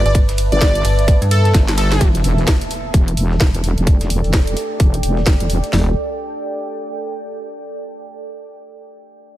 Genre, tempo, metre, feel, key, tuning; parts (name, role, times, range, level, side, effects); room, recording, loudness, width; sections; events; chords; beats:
bass house; 129 BPM; 4/4; swing 60% on 16ths; E minor; A4 = 441 Hz
wobble bass; bass; 0.0-5.9 s; E1 to G1; -17 LUFS; equal; chorus, sidechain pumping
deep dark ambient pad; texture; 0.0-7.6 s; A4 to A5; -26 LUFS; right 1 dB; chorus, built-in reverb, sidechain pumping
plucky unison lead; melody; 0.1-2.0 s; A4 to D5; -22 LUFS; equal; dub echo
metallic FM bass; bass; 0.1-1.5 s; G1 to G2; -15 LUFS; equal; sidechain pumping
breakbeat sampler-style drum kit; drums; 0.1-5.7 s; hi-hat, snare drum; -33 LUFS; left 2 dB
garage drum kit; drums; 0.1-5.9 s; kick drum, snare drum, toms; -13 LUFS; equal
garage drum kit; drums; 0.1-5.7 s; hi-hat, ride cymbal, snare drum; -24 LUFS; equal
impact; sound effects; 2.0-3.9 s; -26 LUFS; equal
little or no reverb; -14 LUFS; side -14 dB against mid
0.0-2.0 A section; 2.0-5.7 B section; 5.7-7.6 C section
drop 0.0-2.0; drum fill 1.5-2.0; impact 2.0-3.9; filter sweep on wobble bass 2.0-5.7
0.0 Gadd9; 2.0 Em; 5.7 N.C.
| 0.15 0.61 1.08 1.54 | 2.01 2.48 2.94 3.40 | 3.87 4.33 4.80 5.26 | 5.73 6.20 6.66 7.13